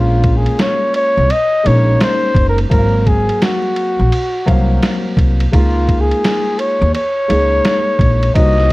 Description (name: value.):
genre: hip hop, jazz-hop.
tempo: 85 BPM.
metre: 4/4.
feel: swing 63% on 16ths.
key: unclear.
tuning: A4 = 440 Hz.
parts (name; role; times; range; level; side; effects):
breathy flugelhorn; melody; 0.0-8.7 s; F4 to Eb5; -16 LUFS; left 1 dB; plate reverb.
dark concert grand piano; accompaniment; 0.0-8.7 s; Gb3 to F5; -20 LUFS; left 1 dB; plate reverb.
upright bass; bass; 0.0-8.7 s; Gb1 to Eb2; -14 LUFS; equal; none.
lo-fi sampler-style drum kit; drums; 0.2-8.7 s; hi-hat, kick drum, ride cymbal, snare drum; -18 LUFS; equal; none.
room: light reverb.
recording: dark, warm production, vinyl crackle.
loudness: -11 LUFS.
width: side -20 dB against mid.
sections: 0.0-8.7 A section.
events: none.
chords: 0.0 Bbm7; 2.7 Ab13; 5.5 Db69.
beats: 0.59 1.30 2.00 | 2.71 3.42 4.12 4.83 | 5.53 6.24 6.95 7.65 | 8.36.